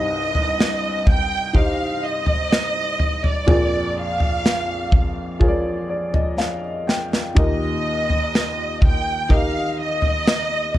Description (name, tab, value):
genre	pop ballad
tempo	62 BPM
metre	4/4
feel	straight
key	Eb major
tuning	A4 = 440 Hz
part	warm studio violin section	melody	0.0-10.8 s	D5 to G5	-23 LUFS	right 2 dB	none
part	clear upright piano	accompaniment	0.0-10.8 s	Bb1 to G5	-24 LUFS	left 1 dB	none
part	modern studio drum kit	drums	0.3-10.8 s	kick drum, snare drum, toms	-18 LUFS	equal	none
room	little or no reverb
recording	dark, warm production, lossy compression artefacts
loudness	-18 LUFS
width	side -14 dB against mid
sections	0.0-10.8 A section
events	upright piano fill 5.4-7.4; drum fill 6.4-7.4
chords	0.0 Cm; 3.5 Bb7; 7.4 Eb